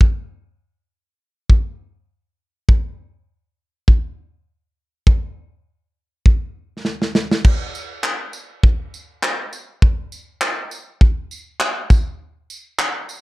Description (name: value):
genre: pop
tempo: 101 BPM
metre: 4/4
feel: swing 55% on 16ths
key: none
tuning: none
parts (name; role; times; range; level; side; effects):
- modern studio drum kit; drums; 0.0-13.2 s; crash cymbal, handclaps, kick drum, snare drum, tambourine; -15 LUFS; equal; none
room: little or no reverb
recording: dark, warm production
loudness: -17 LUFS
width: side -20 dB against mid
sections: 0.0-7.4 A section; 7.4-13.2 B section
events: drum fill 6.9-7.4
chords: none